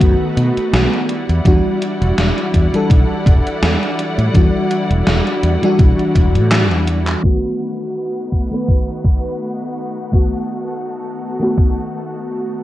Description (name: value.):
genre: vaporwave.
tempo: 83 BPM.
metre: 4/4.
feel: swing 55% on 16ths.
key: unclear.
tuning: A4 = 440 Hz.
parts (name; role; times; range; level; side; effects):
FM electric piano with soft pad layer; accompaniment; 0.0-12.6 s; D#3 to B4; -19 LUFS; equal; ensemble chorus, cassette tape, tape echo.
rich studio string section; sustained chords; 0.0-12.6 s; G3 to F#5; -26 LUFS; left 1 dB; none.
mellow fretless electric bass; bass; 0.0-7.1 s; E1 to B2; -16 LUFS; equal; none.
electronic kick drum; drums; 0.0-11.7 s; none; -13 LUFS; equal; none.
gated 80s digital drum machine; drums; 0.0-7.2 s; handclaps, hi-hat, snare drum; -19 LUFS; equal; gated reverb, gated reverb snare, overdrive.
room: little or no reverb.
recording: cassette tape, low-pass filter.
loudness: -14 LUFS.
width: side -14 dB against mid.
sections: 0.0-7.2 A section; 7.2-12.6 B section.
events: drum fill 6.5-7.2; filter sweep 7.2-12.6.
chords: 0.0 B7; 1.1 Em9; 7.2 B7.